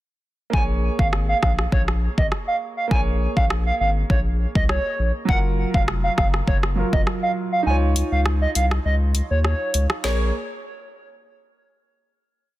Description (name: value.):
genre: dancehall.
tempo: 101 BPM.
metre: 4/4.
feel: straight.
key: Bb minor.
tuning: A4 = 440 Hz.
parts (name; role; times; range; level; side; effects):
hollow clarinet-like synth lead; melody; 0.5-10.3 s; Db5 to Ab5; -25 LUFS; right 2 dB; chorus, digital delay.
warm concert grand piano; accompaniment; 0.5-10.3 s; Gb3 to Db5; -29 LUFS; right 2 dB; none.
saturated sub bass; bass; 0.5-10.3 s; F1 to Eb2; -22 LUFS; equal; none.
deep house drum kit; drums; 0.5-10.2 s; hi-hat, kick drum, rim click, snare drum; -22 LUFS; equal; soft clipping on snare.
room: little or no reverb.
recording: dense, heavily limited modern master.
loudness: -18 LUFS.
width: side -16 dB against mid.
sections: 0.5-10.0 verse; 10.0-12.4 final chord.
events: kick muted 7.7-10.0.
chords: 0.5 Bbm7; 5.3 Gbmaj7; 7.7 Dbadd9; 10.0 Bbm7.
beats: | 0.53 1.13 1.72 2.32 | 2.91 3.50 4.10 4.69 | 5.29 5.88 6.47 7.07 | 7.66 8.26 8.85 9.45 | 10.04.